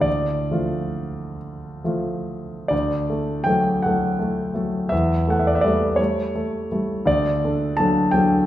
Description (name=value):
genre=classical, romantic nocturne for solo piano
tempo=44-58 BPM (dotted quarters)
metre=6/8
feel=rubato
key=D major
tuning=A4 = 440 Hz
part: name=warm concert grand piano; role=solo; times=0.0-8.5 s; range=D2 to A5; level=-19 LUFS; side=equal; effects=none
room=wet recital hall reverb, RT60 1.4 s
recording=heard from further back in the room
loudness=-19 LUFS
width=side -13 dB against mid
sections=0.0-2.7 A section; 2.7-8.5 B section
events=none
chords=0.1 Dm; 2.7 D; 4.9 A7/E; 7.1 D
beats=| 0.06 1.40 | 2.72 3.84 | 4.92 5.99 | 7.07 8.13